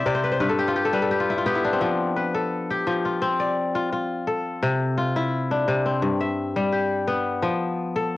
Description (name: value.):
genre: west african traditional.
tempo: 85 BPM.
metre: 4/4.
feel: straight.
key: F lydian.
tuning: A4 = 440 Hz.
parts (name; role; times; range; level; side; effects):
kora; solo; 0.0-8.2 s; G2 to G5; -21 LUFS; left 2 dB; cassette tape.
room: moderate studio reverb, RT60 0.5 s.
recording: home recording on cassette.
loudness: -21 LUFS.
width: side -17 dB against mid.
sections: 0.0-7.4 A section.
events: kora fill 0.0-1.8.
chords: 0.4 G; 1.8 F; 4.6 C; 6.0 G; 7.4 F.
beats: 0.41 1.11 | 1.81 2.52 3.22 3.92 | 4.63 5.33 6.03 6.73 | 7.43 8.13.